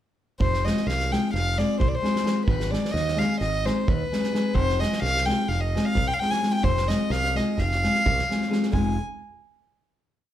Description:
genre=balkan folk, Balkan wedding band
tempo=259 BPM (eighths)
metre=9/8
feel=straight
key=F dorian sharp4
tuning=A4 = 440 Hz
part: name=warm violin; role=melody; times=0.4-9.0 s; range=B4 to Ab5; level=-26 LUFS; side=left 1 dB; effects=none
part: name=modern bright fingered electric bass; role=bass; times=0.4-9.0 s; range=F1 to Eb2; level=-27 LUFS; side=right 1 dB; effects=none
part: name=unplugged drum kit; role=percussion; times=0.4-9.0 s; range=kick drum, snare drum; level=-29 LUFS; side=right 2 dB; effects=none
part: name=nylon-string guitar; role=accompaniment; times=0.6-9.0 s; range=Ab3 to Ab4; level=-27 LUFS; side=left 2 dB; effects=none
room=light reverb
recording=band playing live in one room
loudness=-21 LUFS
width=side -11 dB against mid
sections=0.4-8.7 A section; 8.7-10.3 final chord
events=none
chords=0.4 Fm; 2.5 Ab; 4.5 Fm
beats=| 0.40 0.63 0.86 1.09 1.32 1.55 1.78 2.01 2.24 | 2.47 2.70 2.93 3.16 3.39 3.62 3.85 4.08 4.31 | 4.55 4.78 5.01 5.24 5.47 5.70 5.94 6.17 6.40 | 6.63 6.87 7.10 7.33 7.56 7.79 8.03 8.26 8.49 | 8.72 8.96

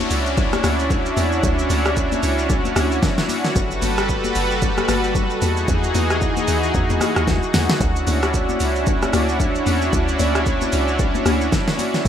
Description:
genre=amapiano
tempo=113 BPM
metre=4/4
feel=swing 58% on 16ths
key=D major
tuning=A4 = 438 Hz
part: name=lush unison pad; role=sustained chords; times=0.0-12.1 s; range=E3 to B4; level=-20 LUFS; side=equal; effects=chorus, sidechain pumping
part: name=deep log drum bass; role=bass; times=0.0-12.1 s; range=F#1 to E2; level=-23 LUFS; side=equal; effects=none
part: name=deep house drum kit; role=drums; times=0.0-12.1 s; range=hi-hat, kick drum, rim click, shaker, snare drum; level=-22 LUFS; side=equal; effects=none
part: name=congas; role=percussion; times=0.0-12.1 s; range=none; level=-27 LUFS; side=left 8 dB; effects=none
part: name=downlifter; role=sound effects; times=0.0-3.6 s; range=none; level=-33 LUFS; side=left 3 dB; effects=none
room=light reverb, digital ambience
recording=rough home demo mix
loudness=-17 LUFS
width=side -9 dB against mid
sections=0.0-12.1 A section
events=drum fill 7.3-7.8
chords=0.0 Dmaj9; 3.6 Gmaj9; 5.4 Emaj9; 7.8 Dmaj9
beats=0.37 0.90 | 1.44 1.97 2.50 3.03 | 3.56 4.09 4.62 5.15 | 5.68 6.21 6.74 7.28 | 7.81 8.34 8.87 9.40 | 9.93 10.46 10.99 11.52 | 12.05

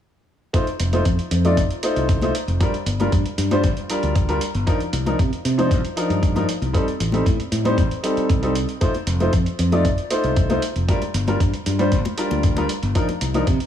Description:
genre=nu-disco, nu disco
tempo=116 BPM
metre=4/4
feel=straight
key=unclear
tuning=A4 = 440 Hz
part: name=warm baby grand piano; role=accompaniment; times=0.5-13.4 s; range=F3 to D5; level=-22 LUFS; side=equal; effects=dub echo
part: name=electronic hi-hat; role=drums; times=0.5-13.7 s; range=none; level=-32 LUFS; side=right 3 dB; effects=overdrive, studio reverb
part: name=electronic kick drum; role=drums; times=0.5-13.6 s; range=none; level=-21 LUFS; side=equal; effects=overdrive, studio reverb
part: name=modern bright fingered electric bass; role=bass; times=0.8-13.6 s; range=F1 to C3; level=-22 LUFS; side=equal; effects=none
part: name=congas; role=percussion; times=0.9-13.4 s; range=none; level=-29 LUFS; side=left 6 dB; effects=none
room=small room ambience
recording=none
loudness=-18 LUFS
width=side -10 dB against mid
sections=0.5-13.7 A section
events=none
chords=0.5 F7; 2.6 Gm7; 4.7 Cm11; 6.7 Am7b5; 8.8 F7; 10.9 Gm7; 13.0 Cm11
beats=| 0.54 1.05 1.57 2.09 | 2.61 3.12 3.64 4.16 | 4.68 5.19 5.71 6.23 | 6.75 7.26 7.78 8.30 | 8.81 9.33 9.85 10.37 | 10.88 11.40 11.92 12.44 | 12.95 13.47

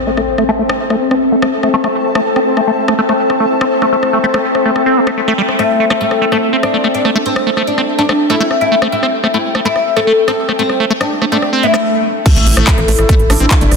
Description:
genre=psychedelic trance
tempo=144 BPM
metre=4/4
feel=straight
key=A minor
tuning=A4 = 442 Hz
part: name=bubbling stepped-filter texture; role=sustained chords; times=0.0-13.8 s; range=E3 to E4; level=-18 LUFS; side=left 3 dB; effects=chorus, built-in reverb, sidechain pumping
part: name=impact and swell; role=sound effects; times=0.0-0.6, 11.5-13.8 s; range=none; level=-20 LUFS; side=right 1 dB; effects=none
part: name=granular cloud pad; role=texture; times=0.0-11.8 s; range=A4 to A5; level=-21 LUFS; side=left 1 dB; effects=built-in reverb, sidechain pumping
part: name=liquid acid bass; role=riff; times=0.1-13.6 s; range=G3 to C4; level=-16 LUFS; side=right 1 dB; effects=chorus, auto-pan, sidechain pumping, dub echo
part: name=big-room dance drum kit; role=drums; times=0.2-13.8 s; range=crash cymbal, handclaps, hi-hat, rim click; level=-20 LUFS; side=left 1 dB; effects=soft clipping on snare
part: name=oud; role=melody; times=5.6-13.8 s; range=A3 to A4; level=-15 LUFS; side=left 2 dB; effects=phaser, sidechain pumping, ping-pong delay
part: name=resonant blip pluck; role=second line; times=8.0-11.5 s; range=A3 to C4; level=-26 LUFS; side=right 3 dB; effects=none
part: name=electronic kick drum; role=drums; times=12.3-13.6 s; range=none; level=-11 LUFS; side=equal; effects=overdrive
part: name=tight sequencer bass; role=bass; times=12.4-13.8 s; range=G1 to A1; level=-14 LUFS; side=equal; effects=tube saturation
room=moderate lush hall reverb, RT60 2.0 s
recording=dense, heavily limited modern master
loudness=-11 LUFS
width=side -4 dB against mid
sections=0.0-12.3 A section; 12.3-13.8 B section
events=impact 0.0-0.6, 12.3-13.8; filter sweep on acid bass 0.0-12.3; filter sweep on synth texture 0.0-12.3; swell 11.5-12.3; stop 11.8-12.3; drop 12.3-13.8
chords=0.0 A5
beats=0.17 | 0.59 1.01 1.42 1.84 | 2.26 2.67 3.09 3.51 | 3.92 4.34 4.76 5.17 | 5.59 6.01 6.42 6.84 | 7.26 7.67 8.09 8.51 | 8.92 9.34 9.76 10.17 | 10.59 11.01 11.42 11.84 | 12.26 12.67 13.09 13.51

